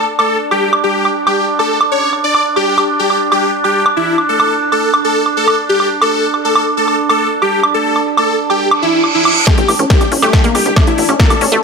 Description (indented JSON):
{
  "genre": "psychedelic trance",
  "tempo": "139 BPM",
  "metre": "4/4",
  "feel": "straight",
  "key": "unclear",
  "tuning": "A4 = 443 Hz",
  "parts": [
    { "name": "dense compressed supersaw", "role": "melody", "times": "0.0-11.4 s", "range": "E4 to D5", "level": "-15 LUFS", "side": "left 2 dB", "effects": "phaser, sidechain pumping, tape echo" },
    { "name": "overtone-sweeping drone", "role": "sustained chords", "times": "0.0-11.6 s", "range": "D4", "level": "-18 LUFS", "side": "right 3 dB", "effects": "chorus, built-in reverb, sidechain pumping" },
    { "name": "big-room dance drum kit", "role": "drums", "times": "0.2-11.6 s", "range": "hi-hat, snare drum, woodblock", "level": "-16 LUFS", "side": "right 2 dB", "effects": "none" },
    { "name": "reverse cymbal", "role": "sound effects", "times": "8.8-9.5 s", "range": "none", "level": "-16 LUFS", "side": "right 4 dB", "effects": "none" },
    { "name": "wide unison pluck", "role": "riff", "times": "9.5-11.6 s", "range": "A3 to C#4", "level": "-17 LUFS", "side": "moving between left 7 dB and equal", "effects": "auto-pan, sidechain pumping, tape echo" },
    { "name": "electronic kick drum", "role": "drums", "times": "9.5-11.3 s", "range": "none", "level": "-11 LUFS", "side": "left 1 dB", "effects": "overdrive" },
    { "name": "tight sequencer bass", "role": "bass", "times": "9.6-11.6 s", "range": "A1 to C#2", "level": "-20 LUFS", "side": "left 1 dB", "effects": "high-pass filter" },
    { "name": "vowel-sweep wobble bass", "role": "second line", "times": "11.4-11.6 s", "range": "A3", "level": "-26 LUFS", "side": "right 1 dB", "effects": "none" }
  ],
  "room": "light reverb",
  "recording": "none",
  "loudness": "-10 LUFS",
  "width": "side -5 dB against mid",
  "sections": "0.0-9.5 A section; 9.5-11.6 B section",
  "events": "reverse cymbal 8.8-9.5; build-up 9.5-11.6; drum fill 9.5-11.6; filter sweep on synth arpeggio sound 9.5-11.6",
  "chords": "0.0 N.C.; 9.5 Aadd11"
}